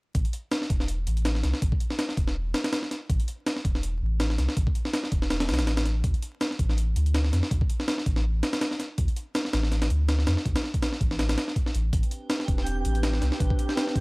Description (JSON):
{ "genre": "drum and bass, jungle", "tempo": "163 BPM", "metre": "4/4", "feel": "swing 55% on 16ths", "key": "A minor", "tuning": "A4 = 440 Hz", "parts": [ { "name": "soft dub sub bass", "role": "bass", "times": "0.1-14.0 s", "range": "E1 to F2", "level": "-25 LUFS", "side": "equal", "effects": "none" }, { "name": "breakbeat sampler-style drum kit", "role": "drums", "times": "0.1-14.0 s", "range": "hi-hat, kick drum, snare drum", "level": "-26 LUFS", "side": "equal", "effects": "small room ambience" }, { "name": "warbly tape-like pad", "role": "sustained chords", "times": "11.9-14.0 s", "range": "C4 to B4", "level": "-33 LUFS", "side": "right 1 dB", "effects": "chorus, built-in reverb" }, { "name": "twinkling granular texture", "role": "texture", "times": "12.2-14.0 s", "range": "G5", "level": "-39 LUFS", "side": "right 2 dB", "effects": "built-in reverb" } ], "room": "little or no reverb", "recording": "dry, gritty hardware recording, vinyl crackle", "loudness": "-24 LUFS", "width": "side -27 dB against mid", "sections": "0.2-14.0 A section", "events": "none", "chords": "0.2 A5; 6.0 D5; 11.9 Am11" }